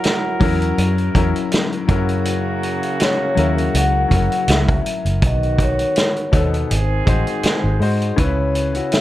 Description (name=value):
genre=lush 1970s-style soul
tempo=81 BPM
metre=4/4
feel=swing 54% on 16ths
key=unclear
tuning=A4 = 440 Hz
part: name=vibraphone with soft mallets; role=melody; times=0.0-9.0 s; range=B#4 to F#5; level=-23 LUFS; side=left 2 dB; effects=none
part: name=warm horn section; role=stabs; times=0.0-7.8 s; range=C#3 to A#4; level=-24 LUFS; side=right 3 dB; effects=none
part: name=vintage drum kit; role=drums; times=0.0-9.0 s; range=hi-hat, kick drum, snare drum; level=-20 LUFS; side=equal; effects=none
part: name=clear concert grand piano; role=accompaniment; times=0.4-9.0 s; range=B2 to B#4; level=-22 LUFS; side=left 5 dB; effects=none
part: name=vintage muted fingered electric bass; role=bass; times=0.4-8.8 s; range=F#1 to G#2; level=-19 LUFS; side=equal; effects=none
room=light reverb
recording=dark, warm production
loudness=-15 LUFS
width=side -14 dB against mid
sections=0.0-8.2 A section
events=none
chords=0.0 F#7; 5.2 B7; 6.7 G#7; 8.2 C#m7